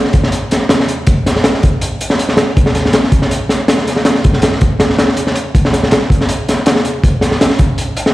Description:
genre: drum and bass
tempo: 161 BPM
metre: 4/4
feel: straight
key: none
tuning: none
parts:
  - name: crunchy breakbeat drum kit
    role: drums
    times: 0.0-8.1 s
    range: hi-hat, kick drum, snare drum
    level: -10 LUFS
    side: equal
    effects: none
room: moderate lush hall reverb, RT60 1.7 s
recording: played on a big sound system in a bare room, large studio reverb, vinyl crackle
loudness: -10 LUFS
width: side -17 dB against mid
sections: 0.0-8.1 A section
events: none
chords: none

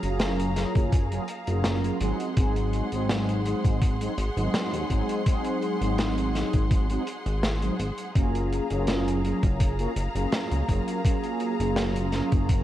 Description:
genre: vaporwave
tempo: 83 BPM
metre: 4/4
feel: straight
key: Gb lydian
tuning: A4 = 440 Hz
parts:
  - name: mellow synth brass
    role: accompaniment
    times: 0.0-12.6 s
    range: Gb3 to Ab4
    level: -28 LUFS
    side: right 1 dB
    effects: lush chorus, tape echo
  - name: clear symphonic string section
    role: sustained chords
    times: 0.0-12.6 s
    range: Ab4 to C6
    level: -35 LUFS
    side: left 1 dB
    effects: none
  - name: chorused synth bass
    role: bass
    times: 0.0-12.6 s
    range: Gb1 to Eb2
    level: -28 LUFS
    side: equal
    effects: none
  - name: crunchy breakbeat drum kit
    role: drums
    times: 0.0-12.6 s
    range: hi-hat, snare drum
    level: -32 LUFS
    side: equal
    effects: none
  - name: electronic kick drum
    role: drums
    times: 0.8-12.6 s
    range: none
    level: -23 LUFS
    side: equal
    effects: none
room: light reverb, small room ambience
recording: dark, warm production, cassette tape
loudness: -23 LUFS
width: side -13 dB against mid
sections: 0.0-12.6 A section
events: none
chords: 0.0 Gbmaj9; 2.0 Ab7; 8.2 Gbmaj9

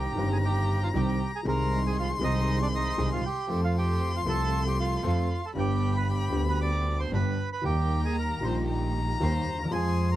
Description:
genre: tango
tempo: 116 BPM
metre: 4/4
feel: rubato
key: unclear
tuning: A4 = 440 Hz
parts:
  - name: bandoneon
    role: melody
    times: 0.0-10.2 s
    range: D4 to D6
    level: -33 LUFS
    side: right 4 dB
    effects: none
  - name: warm violin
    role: second line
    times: 0.0-10.2 s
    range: Bb5 to C6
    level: -35 LUFS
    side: left 5 dB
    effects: none
  - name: warm baby grand piano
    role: accompaniment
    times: 0.0-10.2 s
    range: G1 to A4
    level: -31 LUFS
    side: left 1 dB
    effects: none
  - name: rich symphonic string section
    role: stabs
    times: 0.0-10.2 s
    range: Ab3 to A4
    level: -38 LUFS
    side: right 5 dB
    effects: none
  - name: dark double bass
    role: bass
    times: 0.0-10.2 s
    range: G1 to F2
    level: -28 LUFS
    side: equal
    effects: none
room: little or no reverb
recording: dark, warm production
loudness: -25 LUFS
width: side -14 dB against mid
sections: 0.0-10.2 A section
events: none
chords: 0.0 Cm; 1.5 Ab/C; 3.5 F; 5.5 G; 7.6 Eb

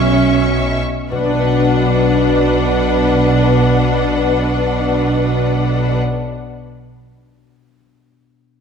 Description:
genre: classical, slow romantic movement for symphony orchestra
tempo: 38 BPM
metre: 3/4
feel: rubato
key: B minor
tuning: A4 = 440 Hz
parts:
  - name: rich symphonic violin section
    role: melody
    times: 0.0-6.0 s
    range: F#5 to C#6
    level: -25 LUFS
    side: left 4 dB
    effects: none
  - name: dark clarinet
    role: second line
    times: 0.0-6.0 s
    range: B4 to E5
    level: -22 LUFS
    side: left 1 dB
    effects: none
  - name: rich symphonic violin section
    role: second line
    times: 0.0-6.0 s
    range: B4 to E5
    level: -23 LUFS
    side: left 1 dB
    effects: none
  - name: rich symphonic viola section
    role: accompaniment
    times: 0.0-6.0 s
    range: C#4 to D4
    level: -19 LUFS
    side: right 1 dB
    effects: none
  - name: concert harp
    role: arpeggios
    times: 0.0-6.3 s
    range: B2 to F#5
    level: -23 LUFS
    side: left 7 dB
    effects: none
  - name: clear symphonic double bass section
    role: bass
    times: 0.0-6.0 s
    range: B1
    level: -20 LUFS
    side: right 1 dB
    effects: none
  - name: rich studio cello section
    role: bass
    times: 0.0-6.0 s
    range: B2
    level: -20 LUFS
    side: right 2 dB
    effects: none
room: moderate scoring stage reverb, RT60 1.8 s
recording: dark, warm production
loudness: -13 LUFS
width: side -6 dB against mid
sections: 0.0-1.1 A section; 1.1-5.9 B section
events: none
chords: 0.0 F#7(no3)/B; 1.1 Bm

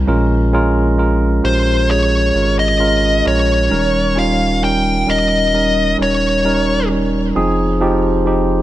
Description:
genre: pop ballad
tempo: 66 BPM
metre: 4/4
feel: straight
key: unclear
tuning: A4 = 440 Hz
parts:
  - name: tine electric piano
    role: accompaniment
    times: 0.0-8.6 s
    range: Bb2 to Db5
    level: -16 LUFS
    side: right 2 dB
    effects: none
  - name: warm sub bass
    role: bass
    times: 0.0-8.6 s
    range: Eb1 to Bb1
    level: -18 LUFS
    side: equal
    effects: none
  - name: nasal lead guitar with a parked wah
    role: melody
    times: 1.4-6.9 s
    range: C5 to G5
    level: -17 LUFS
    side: left 1 dB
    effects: overdrive, digital delay
room: light reverb, digital ambience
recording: none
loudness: -12 LUFS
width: side -14 dB against mid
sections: 0.0-8.6 A section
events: none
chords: 0.1 Bbm7; 3.7 Eb7; 7.4 Fm7

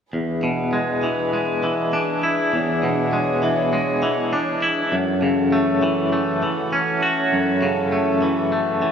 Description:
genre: rock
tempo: 100 BPM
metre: 4/4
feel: straight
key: unclear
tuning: A4 = 440 Hz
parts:
  - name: dark studio string section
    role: sustained chords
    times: 0.1-8.9 s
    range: E3 to C#5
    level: -25 LUFS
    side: right 2 dB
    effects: none
  - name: twangy electric guitar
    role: arpeggios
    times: 0.1-8.9 s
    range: E2 to F#4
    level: -19 LUFS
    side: left 1 dB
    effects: tremolo
room: wet large studio reverb, RT60 1.5 s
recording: band playing live in one room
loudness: -18 LUFS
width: side -7 dB against mid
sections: 0.1-8.9 A section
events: none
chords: 0.1 E7; 4.9 F#m7

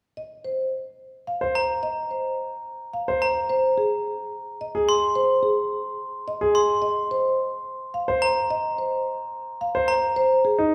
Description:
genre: classical, minimalist pattern music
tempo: 108 BPM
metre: 3/4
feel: straight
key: unclear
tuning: A4 = 440 Hz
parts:
  - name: marimba with soft mallets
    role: melody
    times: 0.2-10.6 s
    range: Ab4 to F5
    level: -28 LUFS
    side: equal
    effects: none
  - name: warm concert grand piano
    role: arpeggios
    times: 1.4-10.7 s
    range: Eb4 to C5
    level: -27 LUFS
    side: equal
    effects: none
  - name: glockenspiel with brass mallets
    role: arpeggios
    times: 1.6-10.1 s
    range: Bb5 to C6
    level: -29 LUFS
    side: equal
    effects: none
room: wet recital hall reverb, RT60 1.8 s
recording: heard from further back in the room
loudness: -24 LUFS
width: mono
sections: 0.2-10.7 A section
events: none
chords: 0.2 N.C.; 3.5 Ab; 6.8 N.C.; 10.2 Ab

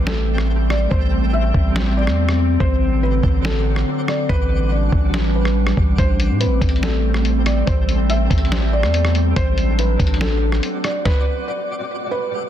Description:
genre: hip hop, atmospheric cloud-rap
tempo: 142 BPM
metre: 4/4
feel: half-time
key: A dorian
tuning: A4 = 440 Hz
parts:
  - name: felt-muted upright piano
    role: melody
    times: 0.0-12.5 s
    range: A4 to E5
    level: -26 LUFS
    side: equal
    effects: ping-pong delay
  - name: warbly tape-like pad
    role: sustained chords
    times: 0.0-11.0 s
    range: D3 to D4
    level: -23 LUFS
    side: equal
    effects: chorus, built-in reverb, sidechain pumping
  - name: long sustained 808-style bass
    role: bass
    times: 0.0-10.6 s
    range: A1 to A2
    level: -19 LUFS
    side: equal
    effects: none
  - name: impact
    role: sound effects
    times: 0.0-0.9 s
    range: none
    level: barely audible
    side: none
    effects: none
  - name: twinkling granular texture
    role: texture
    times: 0.0-12.5 s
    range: A2 to D5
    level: -30 LUFS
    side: equal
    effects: built-in reverb
  - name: lo-fi sampler-style drum kit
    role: drums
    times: 0.1-11.2 s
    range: hi-hat, kick drum, rim click, snare drum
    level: -20 LUFS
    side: equal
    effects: none
room: little or no reverb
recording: dense, heavily limited modern master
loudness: -16 LUFS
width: side -10 dB against mid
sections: 0.0-12.5 A section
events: break 0.0-6.0; impact 0.0-0.9; stop 11.1-12.5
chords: 0.0 Am7; 2.6 D7/A; 4.3 Em9/A; 6.0 Am7; 9.4 D7/A; 11.1 A13sus4

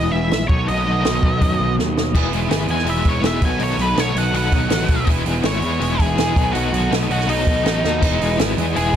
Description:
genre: indie rock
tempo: 163 BPM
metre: 4/4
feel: straight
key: E major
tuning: A4 = 439 Hz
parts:
  - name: octave-fuzz lead guitar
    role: melody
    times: 0.0-9.0 s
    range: D#4 to G#5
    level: -23 LUFS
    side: equal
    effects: distortion, plate reverb, analog delay
  - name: tonewheel organ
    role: sustained chords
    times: 0.0-9.0 s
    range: D#3 to G#4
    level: -31 LUFS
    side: left 1 dB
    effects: overdrive, stopped rotary speaker, plate reverb
  - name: biting overdriven guitar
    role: riff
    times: 0.0-8.9 s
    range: B2 to A4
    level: -25 LUFS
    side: left 9 dB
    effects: tremolo
  - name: sludgy distorted guitar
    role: riff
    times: 0.0-9.0 s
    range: E3 to G#4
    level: -25 LUFS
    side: right 12 dB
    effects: overdrive, ensemble chorus, analog delay
  - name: fuzz picked electric bass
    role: bass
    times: 0.0-9.0 s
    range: E1 to F#2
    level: -22 LUFS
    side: equal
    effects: overdrive
  - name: compact cocktail drum kit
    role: drums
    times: 0.3-9.0 s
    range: crash cymbal, hi-hat, kick drum, snare drum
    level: -21 LUFS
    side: equal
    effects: none
room: light reverb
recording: dark, warm production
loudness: -16 LUFS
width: side -9 dB against mid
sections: 0.0-2.1 A section; 2.1-9.0 B section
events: drum fill 1.8-2.1, 7.8; lead electric guitar solo 2.1-9.0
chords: 0.5 B7; 2.1 Emaj7; 3.4 B7; 5.1 Emaj7; 6.4 B7; 8.0 Emaj7

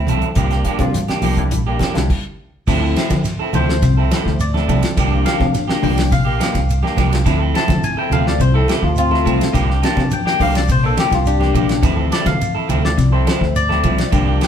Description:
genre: afrobeat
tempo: 105 BPM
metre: 4/4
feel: straight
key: D minor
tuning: A4 = 440 Hz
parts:
  - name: electric guitar through a small old amp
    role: stabs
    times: 0.0-14.5 s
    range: F3 to A4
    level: -22 LUFS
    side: right 3 dB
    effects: none
  - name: fingered electric bass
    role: bass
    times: 0.0-14.4 s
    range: Bb1 to D3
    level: -19 LUFS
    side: right 1 dB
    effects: none
  - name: electric guitar at the edge of break-up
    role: arpeggios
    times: 0.1-14.3 s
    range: C3 to A3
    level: -23 LUFS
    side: left 4 dB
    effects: none
  - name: damped 70s drum kit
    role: drums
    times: 0.1-14.5 s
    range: crash cymbal, hi-hat, kick drum, ride cymbal, snare drum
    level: -21 LUFS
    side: equal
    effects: none
  - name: congas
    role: percussion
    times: 0.1-14.0 s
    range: none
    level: -25 LUFS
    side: right 2 dB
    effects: none
  - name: shekere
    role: percussion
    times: 0.1-14.5 s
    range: none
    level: -27 LUFS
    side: right 2 dB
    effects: none
  - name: barky tine electric piano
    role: accompaniment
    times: 0.8-14.5 s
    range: E3 to A5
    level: -21 LUFS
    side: left 4 dB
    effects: overdrive, phaser
room: wet studio reverb, RT60 0.8 s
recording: band playing live in one room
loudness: -14 LUFS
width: side -8 dB against mid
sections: 0.0-2.7 A section; 2.7-14.5 B section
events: stop 2.1-2.7; tine electric piano solo 2.7-14.5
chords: 0.4 C9sus4; 2.7 Dm9; 5.0 C9sus4; 7.3 Dm9; 9.5 C9sus4; 11.8 Dm9

